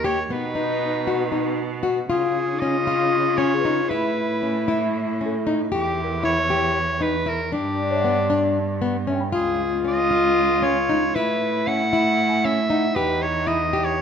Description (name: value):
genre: contemporary instrumental, chamber music in an uneven meter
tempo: 232 BPM (eighths)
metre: 7/8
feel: straight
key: unclear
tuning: A4 = 439 Hz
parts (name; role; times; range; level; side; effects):
- clear soprano saxophone; melody; 0.0-14.0 s; G4 to F#5; -24 LUFS; right 2 dB; none
- warm French horn; second line; 0.0-14.0 s; D4 to E#4; -25 LUFS; left 4 dB; none
- nylon-string guitar; arpeggios; 0.0-14.0 s; B3 to G4; -25 LUFS; left 3 dB; none
- clear cello; bass; 0.0-14.0 s; C#2 to C#3; -27 LUFS; right 5 dB; none
- small celesta; texture; 0.0-13.2 s; D#4 to B5; -33 LUFS; left 3 dB; none
room: moderate recital hall reverb, RT60 1.8 s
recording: minimal, uncompressed stereo recording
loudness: -19 LUFS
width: side -7 dB against mid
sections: 0.0-2.1 A section; 2.1-14.0 B section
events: none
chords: 0.3 B; 2.1 C#; 3.9 Aadd9; 5.7 Em; 7.5 G; 9.3 C#; 11.2 Aadd9; 13.0 Em